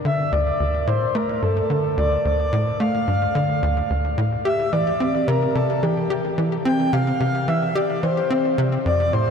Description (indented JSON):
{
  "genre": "ambient",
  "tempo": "109 BPM",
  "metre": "4/4",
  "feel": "straight",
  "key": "unclear",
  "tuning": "A4 = 444 Hz",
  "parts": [
    { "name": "tight sequencer bass", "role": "riff", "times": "0.0-9.3 s", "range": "D2 to G4", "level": "-21 LUFS", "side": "equal", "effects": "lush chorus, ping-pong delay" },
    { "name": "breathy flute-like synth lead", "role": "melody", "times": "0.1-9.3 s", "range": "G4 to G5", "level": "-22 LUFS", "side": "left 1 dB", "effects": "tremolo, lush chorus, ping-pong delay" }
  ],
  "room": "wet huge ambient reverb, RT60 8.1 s",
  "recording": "in a vast, echoing space",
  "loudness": "-18 LUFS",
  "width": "side -6 dB against mid",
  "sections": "0.0-9.3 A section",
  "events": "none",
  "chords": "0.0 Dm; 4.5 C",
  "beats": "| 0.05 0.60 1.15 1.70 | 2.25 2.80 3.35 3.90 | 4.45 5.00 5.55 6.10 | 6.65 7.20 7.75 8.30 | 8.86"
}